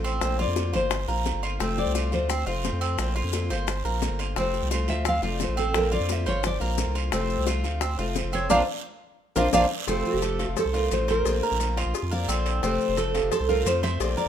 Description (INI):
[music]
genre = latin, Cuban son and guajira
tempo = 174 BPM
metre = 4/4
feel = straight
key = F major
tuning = A4 = 440 Hz
[part]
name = picked steel-string acoustic guitar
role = accompaniment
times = 0.0-14.3 s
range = C3 to F4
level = -32 LUFS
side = left 4 dB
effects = none
[part]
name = Cuban tres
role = arpeggios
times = 0.0-14.3 s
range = C4 to C5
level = -30 LUFS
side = right 4 dB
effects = none
[part]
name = saturated sub bass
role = bass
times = 0.0-14.3 s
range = F1 to F2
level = -28 LUFS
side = equal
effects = none
[part]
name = guiro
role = percussion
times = 0.0-14.3 s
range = none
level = -38 LUFS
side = right 8 dB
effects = none
[part]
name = maracas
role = percussion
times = 0.0-14.3 s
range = none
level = -39 LUFS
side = left 8 dB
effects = none
[part]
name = bongos and cowbell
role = percussion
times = 0.2-14.2 s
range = none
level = -33 LUFS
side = left 8 dB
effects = none
[part]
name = nylon-string guitar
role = melody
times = 0.4-14.3 s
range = G4 to F5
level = -26 LUFS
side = right 1 dB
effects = none
[sound]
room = light reverb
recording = minimal, uncompressed stereo recording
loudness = -23 LUFS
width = side -9 dB against mid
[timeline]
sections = 0.0-9.9 A section; 9.9-14.3 B section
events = nylon-string guitar solo 0.0-9.9; band accent 8.5-9.9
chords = 0.2 Bbadd9; 1.6 F; 3.0 Bbadd9; 4.4 F; 5.7 Bbadd9; 7.1 F; 8.5 Bbadd9; 9.9 F; 11.3 Bbadd9; 12.6 F